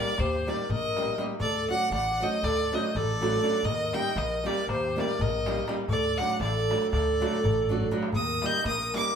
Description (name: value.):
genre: balkan folk, Balkan wedding band.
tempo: 240 BPM (eighths).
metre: 9/8.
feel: straight.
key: unclear.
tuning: A4 = 441 Hz.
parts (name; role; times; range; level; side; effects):
clear violin; melody; 0.0-9.2 s; C5 to G6; -29 LUFS; left 1 dB; none.
accordion; second line; 0.0-9.2 s; G4 to Eb5; -31 LUFS; right 1 dB; light tremolo tuning.
flamenco guitar; accompaniment; 0.0-9.1 s; F#3 to G4; -32 LUFS; right 2 dB; none.
upright bass; bass; 0.2-9.0 s; A1 to Eb2; -33 LUFS; left 1 dB; none.
darbuka; percussion; 0.2-9.0 s; none; -35 LUFS; left 1 dB; none.
room: wet studio reverb, RT60 0.8 s.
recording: band playing live in one room.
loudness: -25 LUFS.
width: side -7 dB against mid.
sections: 0.0-8.1 A section; 8.1-9.2 A section.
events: drum fill 7.6-8.1.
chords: 0.0 Eb; 1.4 D; 3.6 Eb; 5.9 D; 8.1 Eb.